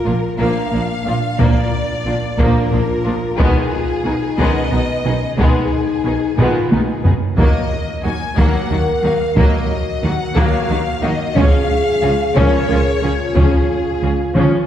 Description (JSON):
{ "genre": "cinematic, epic orchestral film score", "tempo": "60 BPM (dotted quarters)", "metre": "6/8", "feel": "straight", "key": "Eb minor", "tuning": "A4 = 442 Hz", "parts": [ { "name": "rich symphonic violin section", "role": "melody", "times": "0.0-14.4 s", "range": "Ab4 to Ab5", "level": "-24 LUFS", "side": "left 3 dB", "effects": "none" }, { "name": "dark French horn section", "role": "sustained chords", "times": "0.0-14.7 s", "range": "Bb3 to Bb4", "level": "-22 LUFS", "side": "left 2 dB", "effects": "none" }, { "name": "rich symphonic violin section", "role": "second line", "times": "0.1-14.7 s", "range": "Ab3 to Ab4", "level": "-24 LUFS", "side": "left 2 dB", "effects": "none" }, { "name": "rich studio viola section", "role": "accompaniment", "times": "0.1-14.7 s", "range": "Eb3 to Db4", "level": "-23 LUFS", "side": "right 1 dB", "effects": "none" }, { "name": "rich symphonic cello section", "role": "bass", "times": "0.1-14.4 s", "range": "Bb2 to Eb3", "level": "-23 LUFS", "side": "right 2 dB", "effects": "none" }, { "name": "rich symphonic double bass section", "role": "bass", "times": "0.1-14.4 s", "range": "Bb1 to Eb2", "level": "-22 LUFS", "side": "right 2 dB", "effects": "none" }, { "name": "taiko ensemble", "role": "drums", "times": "1.4-14.7 s", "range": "none", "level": "-18 LUFS", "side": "equal", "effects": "none" } ], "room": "wet concert hall reverb, RT60 2.0 s", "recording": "heard from further back in the room", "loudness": "-14 LUFS", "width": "side -10 dB against mid", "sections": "0.0-14.7 A section", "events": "drum fill 6.4-7.4, 14.3-14.7", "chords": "0.0 Bb; 3.4 Abm/Cb; 7.4 Ebm; 11.4 Db" }